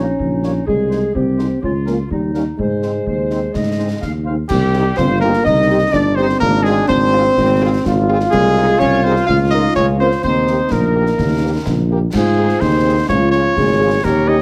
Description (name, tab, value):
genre	military-style march for wind band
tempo	126 BPM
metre	2/4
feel	straight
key	Ab major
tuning	A4 = 438 Hz
part	warm cornet	melody	0.0-14.4 s	G4 to F5	-22 LUFS	equal	none
part	clear woodwind section	second line	0.0-14.4 s	Eb4 to F5	-24 LUFS	equal	none
part	mellow euphonium	second line	0.0-14.4 s	G3 to Ab4	-22 LUFS	equal	none
part	warm French horn section	accompaniment	0.0-14.4 s	F3 to Bb4	-26 LUFS	equal	none
part	mellow tuba	bass	0.0-14.4 s	G1 to Ab2	-20 LUFS	equal	none
part	concert bass drum, concert snare drum and clash cymbals	drums	0.2-14.4 s	none	-27 LUFS	equal	none
part	clear trombone section	sustained chords	5.0-14.4 s	Eb3 to F4	-25 LUFS	equal	none
room	light reverb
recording	heavily compressed radio sound, multiband compression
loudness	-15 LUFS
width	mono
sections	0.0-4.5 A section; 4.5-12.1 B section; 12.1-14.4 A section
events	none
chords	0.0 Gdim/Bb; 0.7 Ab/C; 1.6 Bbm/Db; 2.1 Eb7; 2.6 Ab; 4.5 Cm; 6.4 Fm/Ab; 8.3 Ab/C; 9.3 Bbm/Db; 10.2 Eb; 12.1 Ab; 13.1 Db